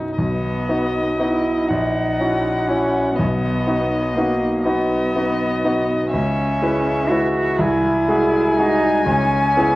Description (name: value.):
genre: classical, slow romantic movement for piano trio.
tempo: 41 BPM (dotted quarters).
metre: 6/8.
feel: rubato.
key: B major.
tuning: A4 = 445 Hz.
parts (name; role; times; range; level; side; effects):
muted violin; melody; 0.0-9.8 s; D#4 to G#5; -25 LUFS; left 3 dB; none.
bright concert grand piano; accompaniment; 0.0-9.8 s; A#1 to B4; -19 LUFS; equal; none.
muted cello; second line; 0.2-9.8 s; A#3 to F#4; -21 LUFS; right 1 dB; none.
room: moderate scoring stage reverb, RT60 1.5 s.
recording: worn, warbling old tape, cassette tape, vinyl crackle, warbly pitch drift.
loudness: -16 LUFS.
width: side -18 dB against mid.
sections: 0.2-9.8 A section.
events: none.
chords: 0.2 B; 1.7 F#7/A#; 3.2 B; 6.1 C#m7; 7.6 G#7/B#; 9.1 C#m7.